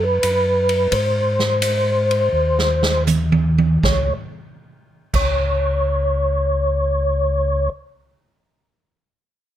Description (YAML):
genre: soul jazz organ trio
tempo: 78-89 BPM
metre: 4/4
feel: swing 68% on 8ths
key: unclear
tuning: A4 = 440 Hz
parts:
  - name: percussive tonewheel organ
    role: melody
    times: 0.0-7.7 s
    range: B4 to C#5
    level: -19 LUFS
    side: left 1 dB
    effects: slow rotary speaker, chorus vibrato
  - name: mellow tonewheel organ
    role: bass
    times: 0.0-7.7 s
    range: C#2 to G#2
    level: -21 LUFS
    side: equal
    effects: slow rotary speaker
  - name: swinging big-band drum kit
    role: drums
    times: 0.2-5.3 s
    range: crash cymbal, hi-hat, kick drum, ride cymbal, snare drum, toms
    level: -21 LUFS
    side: right 2 dB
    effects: none
room: little or no reverb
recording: none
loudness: -16 LUFS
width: side -11 dB against mid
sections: 0.0-3.8 A section; 3.8-6.9 B section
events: slowing down 0.0-3.8; drum fill 2.3-3.8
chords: 0.0 F#sus4; 0.9 G#; 3.8 N.C.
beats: 0.23 | 0.92 1.62 2.33 3.07 | 3.83 4.61 5.38 6.15